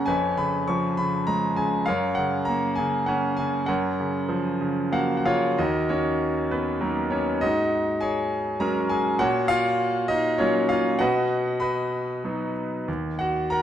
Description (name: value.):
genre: classical, lyrical solo piano.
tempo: 91-103 BPM.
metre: 3/4.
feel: rubato.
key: F# major, Eb minor from 5.6 s.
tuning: A4 = 445 Hz.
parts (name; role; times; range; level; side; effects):
bright concert grand piano; solo; 0.0-13.6 s; Eb2 to C#6; -22 LUFS; equal; none.
room: moderate scoring stage reverb, RT60 1.7 s.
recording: minimal, uncompressed stereo recording.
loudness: -22 LUFS.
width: side -10 dB against mid.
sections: 0.0-5.6 A section; 5.6-13.6 B section.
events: grand piano fill 4.6-5.6.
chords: 0.1 C#7/E#; 1.9 F#; 3.7 F#maj7; 5.6 Ebm; 7.4 Ab7sus4; 9.2 Gbmaj7/Bb; 11.0 B; 12.9 Ebm.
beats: | 0.08 0.68 1.28 | 1.88 2.48 3.08 | 3.69 4.30 4.93 | 5.58 6.21 6.81 | 7.42 8.02 8.61 | 9.20 9.79 10.39 | 11.00 11.61 12.24 | 12.88 13.52.